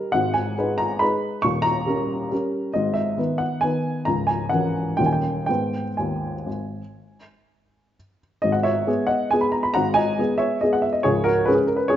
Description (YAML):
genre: classical, piano waltz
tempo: 119-147 BPM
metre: 3/4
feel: rubato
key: G# minor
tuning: A4 = 440 Hz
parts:
  - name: warm upright piano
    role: solo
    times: 0.0-12.0 s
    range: C#1 to C#6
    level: -20 LUFS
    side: equal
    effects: none
room: moderate large studio reverb, RT60 1.4 s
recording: nothing above 7.8 kHz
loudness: -20 LUFS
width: side -11 dB against mid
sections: 0.0-8.4 A section; 8.4-12.0 A section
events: none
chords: 0.1 G#m; 1.4 D#7; 2.8 G#m; 4.1 A#dim/C#; 5.0 D#7; 5.5 G#m; 11.1 C#5